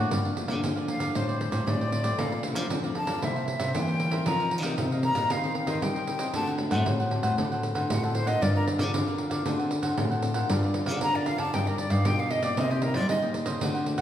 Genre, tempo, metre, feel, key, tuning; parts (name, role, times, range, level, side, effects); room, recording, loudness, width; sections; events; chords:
samba and choro; 116 BPM; 4/4; straight; G minor; A4 = 440 Hz
cavaquinho; accompaniment; 0.0-14.0 s; D4 to Bb5; -34 LUFS; equal
nylon-string guitar; accompaniment; 0.0-14.0 s; F2 to Bb4; -34 LUFS; left 4 dB
nylon-string guitar; bass; 0.0-14.0 s; G2 to G3; -28 LUFS; equal
pandeiro; percussion; 0.1-14.0 s; -32 LUFS; right 2 dB
breathy concert flute; melody; 0.9-13.2 s; G4 to Bb5; -31 LUFS; left 1 dB
wet recital hall reverb, RT60 1.4 s; recorded in a church or concert hall; -24 LUFS; side -10 dB against mid
0.1-14.0 A section
flute solo 0.1-14.0
0.1 Gm7; 1.2 D7sus4/A; 2.2 Bbmaj7; 3.2 C7; 4.3 F7sus4; 5.3 Cm7/Eb; 6.3 D7; 8.4 Gm7; 9.5 D7; 10.5 Gm7; 11.5 Ebmaj7/G; 12.6 Cm7